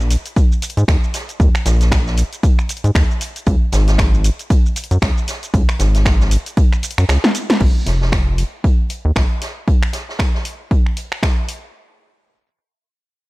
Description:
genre	deep house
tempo	116 BPM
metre	4/4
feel	swing 58% on 16ths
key	Bb minor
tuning	A4 = 439 Hz
part	rubbery square bass	bass	0.0-9.2 s	F1 to Ab2	-14 LUFS	equal	sidechain pumping
part	punchy analog drum machine	drums	0.0-11.6 s	crash cymbal, finger snaps, hi-hat, shaker, snare drum	-22 LUFS	equal	overdrive
part	swinging big-band drum kit	drums	0.1-11.6 s	hi-hat, snare drum	-30 LUFS	right 1 dB	sidechain pumping on hats, high-pass filter on hats, high-pass filter on snare, high-pass filter on room
part	electronic kick drum	drums	0.4-11.3 s	none	-15 LUFS	equal	overdrive
room	small room ambience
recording	none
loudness	-14 LUFS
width	side -21 dB against mid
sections	0.0-7.6 A section; 7.6-11.7 B section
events	drop 0.0-7.6; kick drops out 7.1-7.6; drum fill 7.2-7.6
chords	none

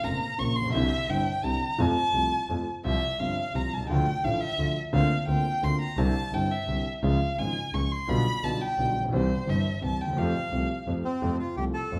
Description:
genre	tango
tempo	172 BPM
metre	3/4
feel	rubato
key	F major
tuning	A4 = 435 Hz
part	warm violin	second line	0.0-10.9 s	C5 to Db6	-32 LUFS	equal	none
part	warm concert grand piano	accompaniment	0.0-12.0 s	F1 to G4	-31 LUFS	equal	none
part	clear double bass	bass	0.0-12.0 s	F1 to F2	-34 LUFS	equal	none
part	bandoneon	melody	11.0-12.0 s	C4 to A4	-33 LUFS	equal	none
room	wet recital hall reverb, RT60 1.4 s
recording	recorded in a church or concert hall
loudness	-27 LUFS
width	mono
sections	0.0-11.2 A section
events	violin solo 0.0-11.2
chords	0.0 Bbm; 0.7 Cadd9; 1.8 F; 2.8 Csus4; 3.9 Dm; 4.9 Bbadd9/D; 6.0 Cadd9; 7.0 Db; 8.1 G7/B; 9.1 C; 10.2 Fadd9; 11.2 F

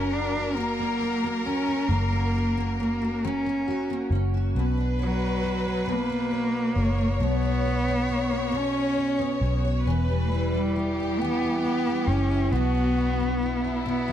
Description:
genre	six-eight pop ballad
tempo	45 BPM (dotted quarters)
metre	6/8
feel	straight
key	B harmonic minor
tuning	A4 = 441 Hz
part	warm cello	melody	0.0-14.1 s	F#3 to D4	-27 LUFS	equal	tape echo
part	clear studio violin section	second line	0.0-14.1 s	E4 to C#5	-32 LUFS	left 2 dB	tape echo
part	picked steel-string acoustic guitar	accompaniment	0.0-14.1 s	B2 to C#5	-30 LUFS	left 1 dB	double-tracked left and right
part	vintage muted fingered electric bass	bass	0.0-14.1 s	E1 to C#2	-27 LUFS	equal	none
room	small room ambience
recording	dry, close 1970s-style studio recording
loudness	-23 LUFS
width	side -10 dB against mid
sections	0.0-14.1 A section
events	none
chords	0.0 F#; 4.5 Bmadd9; 9.9 Em; 12.5 Bm

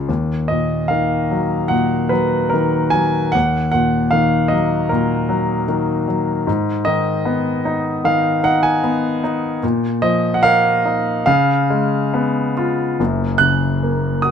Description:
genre	classical, lyrical solo piano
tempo	67-78 BPM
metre	4/4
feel	rubato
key	Eb minor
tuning	A4 = 441 Hz
part	clear concert grand piano	solo	0.0-14.3 s	F#1 to F#6	-15 LUFS	equal	none
room	light reverb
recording	close, detailed microphones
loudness	-15 LUFS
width	side -7 dB against mid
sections	0.1-13.0 A section; 13.0-14.3 B section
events	none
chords	0.1 Ebm; 6.5 Abm; 9.6 Bbsus4; 11.3 Db7; 13.0 F#

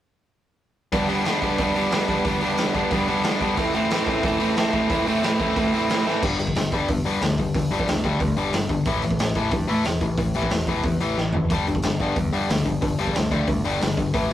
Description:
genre	punk rock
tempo	182 BPM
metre	4/4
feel	straight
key	G major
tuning	A4 = 440 Hz
part	distorted electric guitar	riff	0.9-14.3 s	G2 to E4	-23 LUFS	left 3 dB	overdrive
part	overdriven electric guitar	riff	0.9-6.2 s	G2 to A3	-24 LUFS	right 4 dB	none
part	raw garage drum kit	drums	0.9-14.3 s	crash cymbal, hi-hat, kick drum, snare drum, toms	-26 LUFS	right 1 dB	none
part	growling picked electric bass	bass	6.2-14.3 s	E1 to A2	-27 LUFS	equal	overdrive
room	moderate small room reverb, RT60 0.5 s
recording	rough rehearsal-room recording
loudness	-20 LUFS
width	side -12 dB against mid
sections	0.9-6.2 A section; 6.2-14.3 B section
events	drum fill 6.1, 11.2-11.5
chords	0.9 G; 3.6 Am; 6.2 G5; 8.9 A5; 11.5 G5

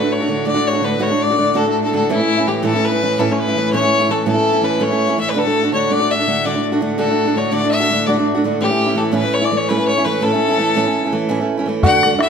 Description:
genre	celtic folk, Celtic slip jig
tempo	111 BPM (dotted quarters)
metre	9/8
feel	straight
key	A major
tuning	A4 = 441 Hz
part	rich fiddle	melody	0.0-12.3 s	E4 to F#5	-18 LUFS	left 4 dB	none
part	picked steel-string acoustic guitar	accompaniment	0.0-12.3 s	A2 to F#4	-18 LUFS	right 4 dB	none
part	clear cello	drone	0.0-11.9 s	A2	-25 LUFS	left 3 dB	none
part	mellow flugelhorn	second line	11.8-12.3 s	E4 to F#4	-23 LUFS	left 5 dB	none
part	open-back banjo	second line	11.8-12.3 s	E4 to F#4	-20 LUFS	right 4 dB	none
part	bodhran	percussion	11.8-12.3 s	none	-19 LUFS	left 2 dB	none
room	moderate recital hall reverb, RT60 1.4 s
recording	none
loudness	-14 LUFS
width	side -6 dB against mid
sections	0.0-11.8 A section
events	none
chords	0.0 D; 2.1 A; 5.4 D; 8.6 A

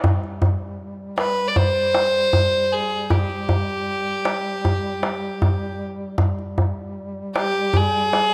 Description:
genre	Arabic maqam ensemble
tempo	78 BPM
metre	4/4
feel	straight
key	unclear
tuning	A4 = 440 Hz
part	mellow duduk	drone	0.0-8.3 s	G3	-34 LUFS	equal	none
part	darbuka	percussion	0.0-8.3 s	none	-24 LUFS	equal	none
part	warm violin	melody	1.2-8.3 s	G4 to D5	-23 LUFS	equal	none
room	moderate lush hall reverb, RT60 2.4 s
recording	rough home demo mix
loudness	-21 LUFS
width	mono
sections	0.0-8.3 A section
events	none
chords	none

